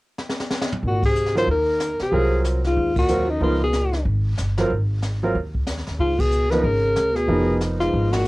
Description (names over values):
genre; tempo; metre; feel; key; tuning
jazz, small-group swing and bop; 186 BPM; 4/4; swing 61% on 8ths; unclear; A4 = 435 Hz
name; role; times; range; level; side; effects
jazz brush drum kit; drums; 0.2-8.3 s; brushed snare drum, hi-hat, kick drum, ride cymbal, snare drum, toms; -27 LUFS; equal; cassette tape
upright bass; bass; 0.8-8.3 s; F1 to Eb2; -23 LUFS; equal; none
breathy alto saxophone; melody; 0.9-8.3 s; Eb4 to C5; -22 LUFS; left 1 dB; cassette tape
breathy trombone; second line; 0.9-8.3 s; Gb2 to Eb3; -28 LUFS; right 1 dB; cassette tape
warm baby grand piano; accompaniment; 1.4-8.2 s; F3 to Bb4; -23 LUFS; right 2 dB; cassette tape
room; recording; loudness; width
light reverb; home recording on cassette; -19 LUFS; side -20 dB against mid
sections
0.8-8.3 A section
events
drum fill 0.2-0.8; band accent 1.0, 2.9, 6.2, 8.1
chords
0.0 N.C.; 0.8 Ab13; 3.4 Db13; 4.7 Ab5; 6.0 Db13